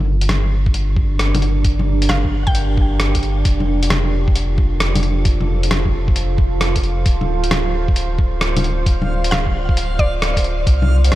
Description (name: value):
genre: future garage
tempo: 133 BPM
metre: 4/4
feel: swing 66% on 16ths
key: D minor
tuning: A4 = 440 Hz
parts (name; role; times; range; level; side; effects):
- deep dark ambient pad; sustained chords; 0.0-11.2 s; C4 to D5; -25 LUFS; right 3 dB; chorus, built-in reverb, vintage 12-bit sampler grit, sidechain pumping
- warm sub bass; bass; 0.0-11.2 s; D1 to C2; -18 LUFS; equal; tube saturation, sidechain pumping
- lo-fi sampler-style drum kit; drums; 0.2-11.2 s; bongos, hi-hat, rim click; -22 LUFS; left 1 dB; none
- electronic kick drum; drums; 0.7-10.8 s; none; -17 LUFS; equal; none
- mallet-like synth pluck; melody; 2.1-2.9, 9.3-10.4 s; D5 to G5; -27 LUFS; equal; chorus, analog delay
- backwards swelling texture; texture; 8.6-11.2 s; F5; -32 LUFS; right 3 dB; built-in reverb
room: light reverb, digital ambience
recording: none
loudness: -15 LUFS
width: side -15 dB against mid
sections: 0.0-11.2 A section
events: none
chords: 0.0 Gm; 3.5 F; 7.1 Dm7